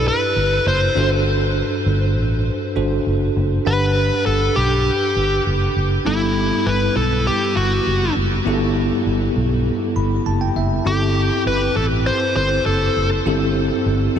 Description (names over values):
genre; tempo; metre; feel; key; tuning
1980s-style pop; 100 BPM; 4/4; straight; G major; A4 = 439 Hz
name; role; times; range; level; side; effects
dark smooth lead guitar; melody; 0.0-13.1 s; E4 to C5; -20 LUFS; left 1 dB; overdrive, tape echo
bell-like tine electric piano; accompaniment; 0.0-14.2 s; G2 to B5; -21 LUFS; equal; fast stereo tremolo, tube saturation
vintage muted fingered electric bass; bass; 0.0-14.2 s; F#1 to B1; -20 LUFS; equal; tube saturation
room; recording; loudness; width
wet huge ambient reverb, RT60 7.8 s; dreamy mix soaked in reverb; -16 LUFS; side -8 dB against mid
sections
0.0-6.1 A section; 6.1-14.2 B section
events
tine electric piano fill 9.7-10.9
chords
0.0 Em7; 1.0 D7/G; 3.7 Gmaj7; 6.1 G69; 10.9 C6